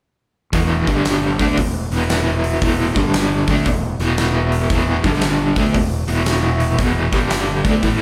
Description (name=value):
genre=blues rock power trio and southern rock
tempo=115 BPM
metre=4/4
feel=swing 65% on 8ths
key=unclear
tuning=A4 = 437 Hz
part: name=overdriven semi-hollow guitar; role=riff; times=0.5-8.0 s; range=E2 to D4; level=-20 LUFS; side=equal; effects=tremolo
part: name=fuzz fingered electric bass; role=bass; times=0.5-8.0 s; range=E1 to D2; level=-25 LUFS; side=equal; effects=overdrive
part: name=huge arena drum kit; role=drums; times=0.5-8.0 s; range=hi-hat, kick drum, snare drum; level=-23 LUFS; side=equal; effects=none
room=light reverb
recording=band playing live in one room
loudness=-18 LUFS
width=mono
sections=0.5-8.0 A section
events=none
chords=0.5 E5; 0.8 G5; 1.3 E5; 2.9 G5; 3.4 E5; 5.0 G5; 5.5 E5; 7.0 G5; 7.6 D5